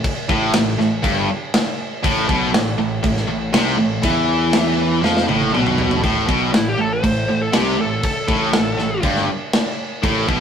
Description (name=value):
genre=hard rock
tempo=120 BPM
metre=4/4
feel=straight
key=A minor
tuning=A4 = 440 Hz
part: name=fuzz picked electric bass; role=bass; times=0.0-10.4 s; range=G1 to F2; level=-25 LUFS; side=equal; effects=overdrive
part: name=tight metal drum kit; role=drums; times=0.0-10.4 s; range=crash cymbal, kick drum, snare drum, toms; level=-20 LUFS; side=equal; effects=none
part: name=distorted electric guitar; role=riff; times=0.3-10.4 s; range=G2 to F3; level=-24 LUFS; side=left 6 dB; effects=overdrive
part: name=overdriven electric guitar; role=riff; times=0.3-10.4 s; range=G2 to F3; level=-24 LUFS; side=right 5 dB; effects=none
part: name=tight distorted guitar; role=riff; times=0.3-10.4 s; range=G2 to F3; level=-22 LUFS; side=equal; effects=distortion
part: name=high-gain lead guitar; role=melody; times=6.6-9.0 s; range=E4 to C5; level=-22 LUFS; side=left 2 dB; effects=distortion
room=moderate stone room reverb, RT60 1.1 s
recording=rough rehearsal-room recording, warm saturation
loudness=-16 LUFS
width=side -8 dB against mid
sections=0.0-6.0 A section; 6.0-10.4 B section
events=drum fill 5.0-6.0; lead electric guitar solo 6.0-10.4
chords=0.0 Am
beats=| 0.05 0.55 1.05 1.55 | 2.04 2.54 3.04 3.54 | 4.04 4.54 5.04 5.54 | 6.04 6.54 7.04 7.54 | 8.04 8.54 9.04 9.54 | 10.04